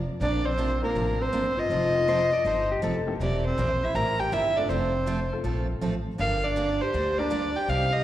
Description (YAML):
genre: country, western swing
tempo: 161 BPM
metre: 4/4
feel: swing 65% on 8ths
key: unclear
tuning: A4 = 440 Hz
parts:
  - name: upright bass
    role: bass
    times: 0.0-8.0 s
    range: E1 to D2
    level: -30 LUFS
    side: equal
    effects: none
  - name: dark fiddle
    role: melody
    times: 0.2-8.0 s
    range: Bb4 to Bb5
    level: -26 LUFS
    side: equal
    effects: slapback echo
  - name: breathy clarinet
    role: second line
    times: 0.2-8.0 s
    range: Bb3 to Bb4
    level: -32 LUFS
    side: right 1 dB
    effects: slapback echo
  - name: picked steel-string acoustic guitar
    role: accompaniment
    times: 0.2-7.9 s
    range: C3 to D5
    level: -33 LUFS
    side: right 3 dB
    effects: slapback echo
  - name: honky-tonk upright piano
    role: accompaniment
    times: 0.8-7.3 s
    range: A3 to Bb4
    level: -37 LUFS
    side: left 5 dB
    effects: slapback echo
  - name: pedal steel guitar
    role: second line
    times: 2.1-3.1 s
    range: G4 to D5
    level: -33 LUFS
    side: left 4 dB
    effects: slapback echo
room: light reverb, small room ambience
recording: live gig heard through the venue's PA, tape saturation, recital hall reverb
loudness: -23 LUFS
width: side -13 dB against mid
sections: 0.0-8.0 A section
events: none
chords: 0.0 Bbadd9; 1.7 F7; 3.2 C7/E; 4.7 F; 6.2 Gm